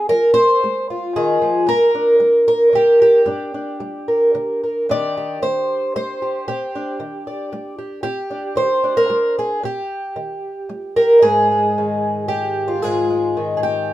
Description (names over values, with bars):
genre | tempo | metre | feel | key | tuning
folk, solo fingerstyle acoustic guitar | 113 BPM | 3/4 | rubato | unclear | A4 = 441 Hz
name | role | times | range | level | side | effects
fingerpicked twelve-string acoustic guitar | solo | 0.0-13.9 s | G2 to D5 | -15 LUFS | equal | none
room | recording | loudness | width
light reverb | minimal, uncompressed stereo recording | -15 LUFS | side -14 dB against mid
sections
0.0-11.2 A section; 11.2-13.9 B section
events
none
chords
0.0 Fm; 1.7 Gm; 4.9 Cmadd9; 11.2 Ab5